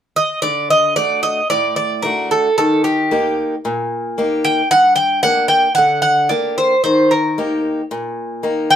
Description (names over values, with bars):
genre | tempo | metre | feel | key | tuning
greek folk, Greek bouzouki band | 112 BPM | 4/4 | straight | D phrygian dominant | A4 = 440 Hz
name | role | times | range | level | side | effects
Greek bouzouki | melody | 0.2-8.8 s | G4 to G5 | -14 LUFS | right 1 dB | none
picked old ladder-braced acoustic guitar | accompaniment | 0.4-8.8 s | G2 to G4 | -20 LUFS | left 1 dB | none
room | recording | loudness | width
moderate studio reverb, RT60 0.5 s | band playing live in one room | -14 LUFS | side -9 dB against mid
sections
0.4-8.8 A section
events
none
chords
0.4 D; 2.6 Eb; 4.7 Gm; 6.8 Eb